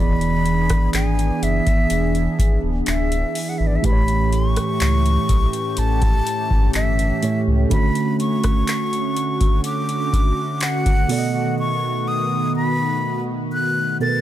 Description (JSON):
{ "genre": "contemporary R&B", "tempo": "62 BPM", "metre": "4/4", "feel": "straight", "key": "D major", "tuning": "A4 = 438 Hz", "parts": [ { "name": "breathy concert flute", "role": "melody", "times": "0.0-14.2 s", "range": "D5 to A6", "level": "-24 LUFS", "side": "left 1 dB", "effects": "tape echo" }, { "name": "tine electric piano", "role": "accompaniment", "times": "0.0-14.2 s", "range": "A2 to D#5", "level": "-24 LUFS", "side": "right 4 dB", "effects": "none" }, { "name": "chorused pulse-width pad", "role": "sustained chords", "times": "0.0-14.2 s", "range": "D3 to G#4", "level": "-25 LUFS", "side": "left 1 dB", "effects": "none" }, { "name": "sub bass with octave", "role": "bass", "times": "0.0-7.7 s", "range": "D1 to C#2", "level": "-21 LUFS", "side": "equal", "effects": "none" }, { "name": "booming analog drum machine", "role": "drums", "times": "0.2-11.3 s", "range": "handclaps, hi-hat, kick drum, rim click", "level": "-20 LUFS", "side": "equal", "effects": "none" } ], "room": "little or no reverb", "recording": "none", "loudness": "-17 LUFS", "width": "side -12 dB against mid", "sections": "0.0-14.2 A section", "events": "none", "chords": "0.0 E7; 3.8 A7; 7.7 Dmaj7; 11.1 B7", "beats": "0.94 1.91 2.87 | 3.84 4.81 5.78 6.74 | 7.71 8.68 9.65 10.62 | 11.58 12.55 13.52" }